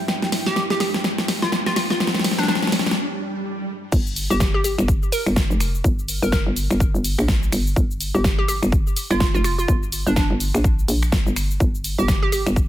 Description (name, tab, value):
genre	bass house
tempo	125 BPM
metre	4/4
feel	swing 59% on 16ths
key	G dorian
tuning	A4 = 440 Hz
part	dark analog pad	sustained chords	0.0-3.9 s	G3 to G5	-34 LUFS	right 3 dB	chorus, sidechain pumping
part	riser and swell	sound effects	0.0-3.9 s	none	-30 LUFS	right 1 dB	none
part	airy breathy pad	texture	0.0-3.0 s	D4 to G5	-35 LUFS	right 1 dB	chorus, sidechain pumping
part	big-room dance drum kit	drums	0.1-12.7 s	crash cymbal, finger snaps, hi-hat, shaker, snare drum	-24 LUFS	left 1 dB	none
part	hollow square pluck	melody	0.5-12.4 s	D4 to Bb4	-26 LUFS	equal	chorus, ping-pong delay
part	hollow knocking FM bass	bass	3.9-12.7 s	F1 to Bb1	-22 LUFS	equal	sidechain pumping
part	electronic kick drum	drums	3.9-12.7 s	none	-20 LUFS	equal	none
room	light reverb, digital ambience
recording	none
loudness	-18 LUFS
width	side -13 dB against mid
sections	0.0-3.9 A section; 3.9-12.7 B section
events	build-up 0.0-3.9; drum fill 0.0-3.0; riser 0.0-3.0; break 3.0-3.9; swell 3.0-3.9; drop 3.9-12.7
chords	0.0 G5; 3.9 N.C.